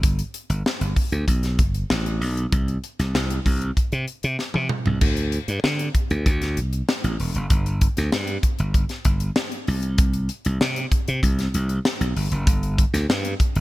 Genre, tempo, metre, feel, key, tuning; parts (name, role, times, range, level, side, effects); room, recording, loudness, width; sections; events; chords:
polished 1980s jazz-funk pop; 96 BPM; 4/4; straight; A4 = 440 Hz
glassy slap bass; bass; 0.0-13.6 s; E1 to D3; -22 LUFS; equal
crisp fusion drum kit; drums; 0.0-13.6 s; crash cymbal, hi-hat, kick drum, snare drum, toms; -22 LUFS; equal; gated reverb
little or no reverb; -20 LUFS; side -18 dB against mid
0.0-5.0 A section; 5.0-13.6 B section
drum fill 4.4-5.0